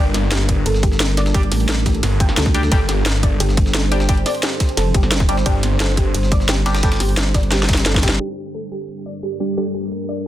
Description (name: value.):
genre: dark technical drum and bass.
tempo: 175 BPM.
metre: 4/4.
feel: straight.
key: G minor.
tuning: A4 = 440 Hz.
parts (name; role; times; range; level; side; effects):
deep dark ambient pad; sustained chords; 0.0-10.3 s; G3 to C5; -26 LUFS; right 1 dB; chorus, built-in reverb, sidechain pumping.
band-passed chord stab; stabs; 0.0-9.7 s; G3 to G4; -26 LUFS; equal; phaser, dub echo.
snarling distorted saw bass; bass; 0.0-3.4, 5.5-6.1 s; G1; -19 LUFS; equal; distortion, overdrive.
soft round pluck; arpeggios; 0.1-10.1 s; G4 to G5; -27 LUFS; equal; lush chorus, sidechain pumping, dub echo.
breakbeat sampler-style drum kit; drums; 0.1-8.1 s; hi-hat, ride cymbal, snare drum; -29 LUFS; right 1 dB; none.
drum and bass drum kit; drums; 0.1-10.2 s; crash cymbal, hi-hat, snare drum; -21 LUFS; equal; none.
electronic kick drum; drums; 0.5-8.1 s; none; -17 LUFS; equal; overdrive.
vowel-sweep wobble bass; bass; 0.7-8.2 s; F1 to D2; -18 LUFS; equal; chorus.
room: digital ambience.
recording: dense, heavily limited modern master, low-pass filter.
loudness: -15 LUFS.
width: side -13 dB against mid.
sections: 0.0-8.2 A section; 8.2-10.3 B section.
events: filter sweep on synth stab 0.0-8.2; drum fill 7.5-8.2; band accent 8.1; filter sweep 8.2-10.3.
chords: 0.0 Gmadd9.